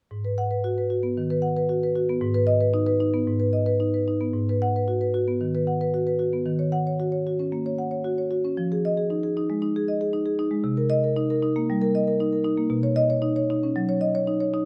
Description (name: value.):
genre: classical, contemporary piece for solo marimba.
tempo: 115 BPM.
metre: 4/4.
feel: rubato.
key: G# minor.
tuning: A4 = 440 Hz.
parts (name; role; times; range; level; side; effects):
marimba with medium hard mallets; solo; 0.1-14.7 s; G#2 to F#5; -24 LUFS; equal; none.
room: moderate stone room reverb, RT60 1.1 s.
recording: none.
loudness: -24 LUFS.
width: mono.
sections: 0.1-4.3 A section; 4.3-14.7 B section.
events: none.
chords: 0.1 G#m7; 2.2 B/G#; 4.3 G#m7; 6.5 D#m7; 8.6 Fm7; 10.7 Cm7; 12.7 Badd9.